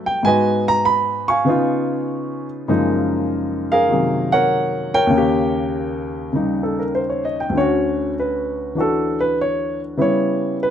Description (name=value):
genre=jazz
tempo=99 BPM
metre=4/4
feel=swing 68% on 8ths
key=unclear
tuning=A4 = 440 Hz
part: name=warm baby grand piano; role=solo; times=0.0-10.7 s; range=D2 to C#6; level=-17 LUFS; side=equal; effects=none
room=moderate studio ambience, RT60 0.5 s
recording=none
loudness=-17 LUFS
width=side -9 dB against mid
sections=0.0-7.5 A section; 7.5-10.7 B section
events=grand piano solo 7.5-10.7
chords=0.2 G#m7; 1.5 C#9; 2.7 F#maj13; 5.1 Eb7; 7.5 Dmaj7; 10.0 C#m7b5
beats=| 0.25 0.86 1.47 2.07 | 2.68 3.29 3.90 4.50 | 5.11 5.72 6.33 6.93 | 7.54 8.15 8.76 9.37 | 9.97 10.58